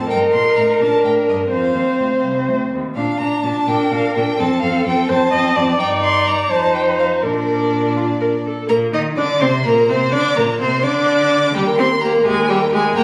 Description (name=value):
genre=quick classical-period movement for string quartet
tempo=84 BPM (dotted quarters)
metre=6/8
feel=straight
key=Bb major, Eb major from 8.7 s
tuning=A4 = 438 Hz
part: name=rich violin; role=melody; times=0.0-13.0 s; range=D5 to Eb6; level=-25 LUFS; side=equal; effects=none
part: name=warm violin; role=second line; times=0.0-13.0 s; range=C4 to G5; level=-21 LUFS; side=equal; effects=none
part: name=rich viola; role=accompaniment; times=0.0-13.0 s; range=G3 to Eb5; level=-20 LUFS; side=equal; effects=none
part: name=rich cello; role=bass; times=0.0-13.0 s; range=C2 to Eb3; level=-26 LUFS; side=equal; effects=none
room=moderate recital hall reverb, RT60 1.5 s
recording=recorded on a phone in the room, studio reverb, compression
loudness=-17 LUFS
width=mono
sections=0.0-8.7 A section; 8.7-13.0 B section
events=none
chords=0.1 Eb/G; 1.5 F5; 3.0 Bb; 4.4 F; 5.8 Eb/G; 6.5 F5; 7.2 Bb; 8.7 Eb5/Bb; 10.1 Bb; 11.5 Eb